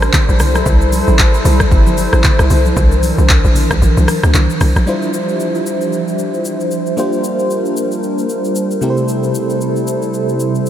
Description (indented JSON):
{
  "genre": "amapiano",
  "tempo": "114 BPM",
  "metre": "4/4",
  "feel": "swing 58% on 16ths",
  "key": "D minor",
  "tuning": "A4 = 437 Hz",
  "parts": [
    { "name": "hollow soft pad", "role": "sustained chords", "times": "0.0-10.7 s", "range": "C3 to E5", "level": "-18 LUFS", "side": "equal", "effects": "chorus, sidechain pumping" },
    { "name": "hollow log drum bass", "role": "bass", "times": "0.0-4.9 s", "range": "G1 to D2", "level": "-12 LUFS", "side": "equal", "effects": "none" },
    { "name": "afro-pop drum kit", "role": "drums", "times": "0.0-10.7 s", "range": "handclaps, hi-hat, kick drum, rim click, shaker", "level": "-16 LUFS", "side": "equal", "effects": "none" },
    { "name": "congas", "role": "percussion", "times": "0.1-4.9 s", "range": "none", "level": "-24 LUFS", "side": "left 2 dB", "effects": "none" },
    { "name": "FM electric piano with tremolo", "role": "accompaniment", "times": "4.9-10.7 s", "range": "C3 to C5", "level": "-18 LUFS", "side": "equal", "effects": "phaser" }
  ],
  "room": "moderate huge ambient reverb, RT60 7.8 s",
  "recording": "dreamy mix soaked in reverb",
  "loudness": "-12 LUFS",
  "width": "side -11 dB against mid",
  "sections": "0.0-4.9 A section; 4.9-10.7 B section",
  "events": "drop 0.0-4.9; kick muted 3.8-4.9",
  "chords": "0.4 Am7; 2.8 C9; 4.9 Dm11; 7.0 Bb69; 8.8 Am7/C"
}